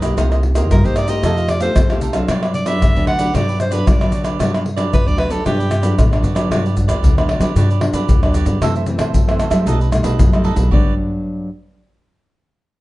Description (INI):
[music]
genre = samba and choro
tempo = 114 BPM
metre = 4/4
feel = straight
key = G major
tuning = A4 = 440 Hz
[part]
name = cavaquinho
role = accompaniment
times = 0.0-10.9 s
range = Eb4 to F5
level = -26 LUFS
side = right 7 dB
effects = none
[part]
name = nylon-string guitar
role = accompaniment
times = 0.0-11.5 s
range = F#2 to G4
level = -22 LUFS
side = left 1 dB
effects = none
[part]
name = upright bass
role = bass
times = 0.0-11.0 s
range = G1 to G3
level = -19 LUFS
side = equal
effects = none
[part]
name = maracas, pandeiro, tamborim and surdo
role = percussion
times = 0.0-10.8 s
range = none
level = -17 LUFS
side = left 1 dB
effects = none
[part]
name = bright soprano saxophone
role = melody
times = 0.7-6.0 s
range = G4 to F#5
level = -22 LUFS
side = right 1 dB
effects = none
[sound]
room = light reverb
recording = dark, warm production, nothing above 10.5 kHz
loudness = -14 LUFS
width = side -18 dB against mid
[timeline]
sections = 0.0-6.5 A section; 6.5-10.7 B section; 10.7-12.8 C section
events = none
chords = 0.2 Cm7; 1.2 F9; 2.3 Gmaj7; 8.6 F#m7b5; 9.7 B7b13; 10.7 Gmaj7